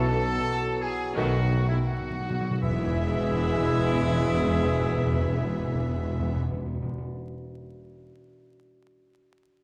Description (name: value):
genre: classical, dramatic, fast romantic movement for symphony orchestra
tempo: 78-94 BPM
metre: 4/4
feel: straight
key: E major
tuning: A4 = 443 Hz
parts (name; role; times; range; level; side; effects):
- warm symphonic violin section; melody; 0.0-6.4 s; E4 to E5; -42 LUFS; equal; none
- clear oboe; second line; 0.0-6.4 s; E4 to E5; -41 LUFS; equal; none
- dark symphonic violin section; second line; 0.0-6.4 s; A3 to G#4; -43 LUFS; equal; none
- hollow concert flute; second line; 0.0-6.4 s; E5 to A5; -41 LUFS; equal; none
- warm clarinet; second line; 0.0-6.4 s; G#4 to A4; -37 LUFS; equal; none
- rich symphonic viola section; accompaniment; 0.0-6.4 s; D#3 to B3; -41 LUFS; equal; none
- warm bassoon; accompaniment; 0.0-6.4 s; D#3 to E3; -38 LUFS; equal; none
- bright trombone section; sustained chords; 0.0-6.4 s; D#3 to G#3; -41 LUFS; equal; none
- mellow French horn section; sustained chords; 0.0-6.4 s; A3 to F#4; -38 LUFS; equal; none
- concert harp; arpeggios; 0.0-7.2 s; B2 to E5; -41 LUFS; equal; none
- warm trumpet section; stabs; 0.0-6.4 s; E4 to A4; -37 LUFS; equal; none
- clear symphonic double bass section; bass; 0.0-6.4 s; E1 to B1; -34 LUFS; equal; none
- dark symphonic cello section; bass; 0.0-6.4 s; E2 to B2; -36 LUFS; equal; none
- mellow tuba; bass; 0.0-6.4 s; E1 to B1; -35 LUFS; equal; none
- timpani; percussion; 1.2-7.1 s; E2 to B2; -33 LUFS; equal; none
room: moderate scoring stage reverb, RT60 1.7 s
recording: vinyl crackle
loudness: -26 LUFS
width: mono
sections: 0.0-2.6 A section; 2.6-5.6 B section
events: slowing down 0.0-2.6; timpani fill 1.2-2.6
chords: 0.0 B7sus4; 1.2 B7; 2.6 E